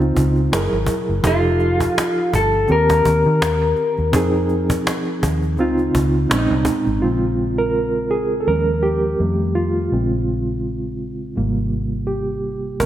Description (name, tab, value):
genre	R&B, neo-soul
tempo	83 BPM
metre	4/4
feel	swing 56% on 16ths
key	Bb dorian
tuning	A4 = 440 Hz
part	electric guitar through a small old amp	melody	0.0-6.3 s	F4 to C5	-19 LUFS	left 2 dB	none
part	reed electric piano	accompaniment	0.0-12.9 s	Bb2 to Bb4	-20 LUFS	right 2 dB	fast tremolo
part	vintage muted fingered electric bass	bass	0.0-12.9 s	F1 to Eb3	-21 LUFS	equal	none
part	cajon	drums	0.0-6.9, 12.8-12.9 s	none	-24 LUFS	equal	none
room	moderate concert hall reverb, RT60 2.2 s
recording	big arena sound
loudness	-16 LUFS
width	side -12 dB against mid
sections	0.0-7.0 A section; 7.0-12.9 B section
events	reed electric piano solo 7.0-12.9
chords	0.0 Dbmaj9; 0.5 Gb9; 1.2 F9; 2.7 Cm7/Eb; 4.1 Fm7; 5.6 Dbmaj9; 6.3 Bbm11; 7.0 Bbm9; 8.5 Eb9sus4; 9.2 F7; 9.9 Bbm9; 11.4 Abmaj9